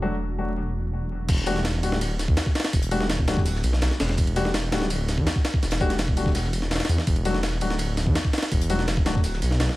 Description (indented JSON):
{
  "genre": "drum and bass, jungle",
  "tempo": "166 BPM",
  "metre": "4/4",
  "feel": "straight",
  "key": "E minor",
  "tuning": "A4 = 440 Hz",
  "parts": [
    { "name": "airy breathy pad", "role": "sustained chords", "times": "0.0-1.3 s", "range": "F#3 to F#4", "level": "-38 LUFS", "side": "right 1 dB", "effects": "chorus" },
    { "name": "warm baby grand piano", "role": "stabs", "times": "0.0-9.2 s", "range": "F#3 to F#4", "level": "-29 LUFS", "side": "left 2 dB", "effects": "vintage 12-bit sampler grit, dub echo" },
    { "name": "detuned saw bass", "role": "bass", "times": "0.0-9.7 s", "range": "D1 to E2", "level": "-25 LUFS", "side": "equal", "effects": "none" },
    { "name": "breakbeat sampler-style drum kit", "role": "drums", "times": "1.3-9.8 s", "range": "crash cymbal, kick drum, ride cymbal, snare drum", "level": "-24 LUFS", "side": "equal", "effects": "none" },
    { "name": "modern studio drum kit", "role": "drums", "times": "1.3-9.8 s", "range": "hi-hat, shaker, snare drum", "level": "-38 LUFS", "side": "left 3 dB", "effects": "high-pass filter on hats, high-pass filter on snare, high-pass filter on perc, high-pass filter on room" }
  ],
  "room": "little or no reverb",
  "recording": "vinyl crackle",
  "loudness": "-21 LUFS",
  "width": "side -18 dB against mid",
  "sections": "0.0-1.3 A section; 1.3-9.8 B section",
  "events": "drop 1.3-9.8",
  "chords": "0.0 D/E; 1.3 Em11; 7.1 D"
}